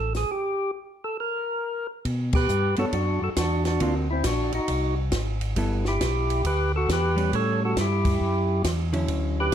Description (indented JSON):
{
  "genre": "soul jazz organ trio",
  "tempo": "136 BPM",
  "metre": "4/4",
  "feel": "swing 65% on 8ths",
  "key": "B minor",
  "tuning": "A4 = 441 Hz",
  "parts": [
    { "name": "percussive tonewheel organ", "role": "melody", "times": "0.0-9.5 s", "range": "C4 to C#5", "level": "-26 LUFS", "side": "right 1 dB", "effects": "slow rotary speaker, overdrive" },
    { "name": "mellow tonewheel organ", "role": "bass", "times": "0.0-9.5 s", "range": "G1 to B2", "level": "-26 LUFS", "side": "equal", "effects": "overdrive, chorus vibrato, slow rotary speaker" },
    { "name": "compact cocktail drum kit", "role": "drums", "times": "0.1-9.5 s", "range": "crash cymbal, hi-hat, kick drum, ride cymbal, snare drum", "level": "-30 LUFS", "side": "equal", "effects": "none" },
    { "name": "hollow-body jazz guitar", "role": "accompaniment", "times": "2.8-9.5 s", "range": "D3 to C#5", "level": "-29 LUFS", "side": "right 1 dB", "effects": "none" }
  ],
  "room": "light reverb",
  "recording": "dark, warm production",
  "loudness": "-22 LUFS",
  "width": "side -9 dB against mid",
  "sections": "0.0-2.0 A section; 2.0-9.5 B section",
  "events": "break 0.3-2.0; band accent 2.3",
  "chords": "0.3 N.C.; 2.0 Bm; 3.8 Daug7; 5.6 G69; 7.3 A7",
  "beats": "| 0.29 0.73 1.17 1.61 | 2.05 2.49 2.93 3.37 | 3.81 4.25 4.69 5.13 | 5.57 6.01 6.45 6.89 | 7.33 7.76 8.20 8.64 | 9.08 9.52"
}